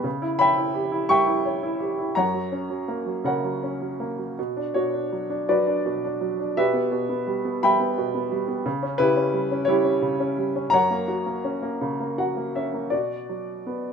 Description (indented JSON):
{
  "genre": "classical, lyrical solo piano",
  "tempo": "53-59 BPM (dotted quarters)",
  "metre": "6/8",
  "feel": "rubato",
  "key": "unclear",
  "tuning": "A4 = 440 Hz",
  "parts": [
    { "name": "warm upright piano", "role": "solo", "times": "0.0-13.9 s", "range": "F#2 to C#6", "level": "-22 LUFS", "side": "equal", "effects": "none" }
  ],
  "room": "light reverb",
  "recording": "none",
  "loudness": "-22 LUFS",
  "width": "side -6 dB against mid",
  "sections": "0.0-12.9 A section; 12.9-13.9 B section",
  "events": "upright piano fill 11.8-12.9",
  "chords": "0.1 C#dim; 2.2 F#; 4.4 Bm; 6.6 Em/B; 8.7 C#dim; 10.7 F#; 12.9 Bm"
}